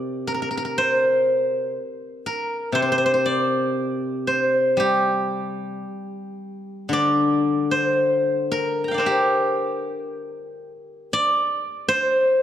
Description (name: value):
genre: chinese traditional, Chinese solo plucked strings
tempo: 55-61 BPM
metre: 2/4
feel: rubato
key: unclear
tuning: A4 = 440 Hz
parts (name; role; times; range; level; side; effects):
- steel-string zither; solo; 0.0-12.4 s; C3 to Bb5; -20 LUFS; equal; none
room: light reverb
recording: dark, warm production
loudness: -19 LUFS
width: side -10 dB against mid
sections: 0.0-6.9 A section; 6.9-12.4 B section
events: none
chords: none